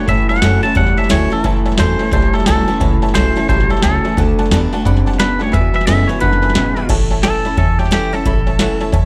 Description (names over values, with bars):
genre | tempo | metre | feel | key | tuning
rockabilly | 176 BPM | 4/4 | swing 62% on 8ths | A mixolydian | A4 = 440 Hz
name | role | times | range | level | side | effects
twangy electric guitar | melody | 0.0-8.8 s | G4 to A5 | -22 LUFS | equal | tape echo
picked steel-string acoustic guitar | accompaniment | 0.0-9.1 s | E2 to F#4 | -25 LUFS | equal | none
tack piano | accompaniment | 0.0-9.1 s | B4 to B5 | -28 LUFS | equal | none
electric guitar through a small old amp | riff | 0.0-6.9 s | E2 to C4 | -22 LUFS | equal | none
upright bass | bass | 0.1-9.1 s | A1 to B2 | -20 LUFS | equal | none
booming analog drum machine | drums | 0.1-9.0 s | crash cymbal, hi-hat, kick drum, snare drum | -19 LUFS | equal | none
room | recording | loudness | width
small room reverb | none | -14 LUFS | mono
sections
0.0-6.9 A section; 6.9-9.1 B section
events
none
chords
0.1 A; 4.2 D; 5.5 E7; 6.9 A